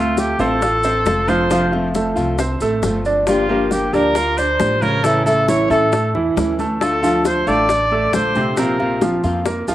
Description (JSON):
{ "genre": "latin, Cuban son and guajira", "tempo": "136 BPM", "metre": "4/4", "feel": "straight", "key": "D minor", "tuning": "A4 = 440 Hz", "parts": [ { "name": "warm trumpet", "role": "melody", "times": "0.0-9.0 s", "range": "F4 to D5", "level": "-19 LUFS", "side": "equal", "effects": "cassette tape" }, { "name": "nylon-string guitar", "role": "accompaniment", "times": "0.0-9.5 s", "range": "C3 to G4", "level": "-21 LUFS", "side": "left 2 dB", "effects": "none" }, { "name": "clear baby grand piano", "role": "arpeggios", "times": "0.0-9.7 s", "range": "C3 to F5", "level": "-20 LUFS", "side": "right 3 dB", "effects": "none" }, { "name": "upright bass", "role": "bass", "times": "0.0-9.7 s", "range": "F1 to A2", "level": "-26 LUFS", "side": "equal", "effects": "none" }, { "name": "bongos", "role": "percussion", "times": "0.2-9.7 s", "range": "none", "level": "-25 LUFS", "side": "left 6 dB", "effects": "none" }, { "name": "congas", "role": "percussion", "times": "0.2-9.7 s", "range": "none", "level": "-27 LUFS", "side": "left 1 dB", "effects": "none" }, { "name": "maracas", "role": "percussion", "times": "0.2-9.7 s", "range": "none", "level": "-35 LUFS", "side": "right 2 dB", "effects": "none" } ], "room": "wet spring reverb, RT60 1.9 s, studio reverb", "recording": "home recording on cassette", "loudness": "-15 LUFS", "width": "side -14 dB against mid", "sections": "0.0-9.7 A section", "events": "none", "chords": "0.0 Dm7; 1.5 F; 3.3 Gm7; 5.0 A; 6.8 Dm; 8.6 Bbsus2" }